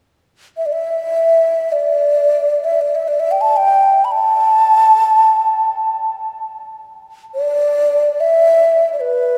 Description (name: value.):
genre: world meditative, free-time meditation music.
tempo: free time.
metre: none.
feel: none.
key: E minor pentatonic.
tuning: A4 = 439 Hz.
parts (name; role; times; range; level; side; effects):
breathy low xiao; solo; 0.6-9.4 s; B4 to B5; -15 LUFS; equal; diffuse ambient delay.
room: wet cathedral reverb, RT60 5.1 s.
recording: dreamy mix soaked in reverb.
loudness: -14 LUFS.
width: mono.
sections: 0.0-9.4 A section.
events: none.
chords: none.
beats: free time.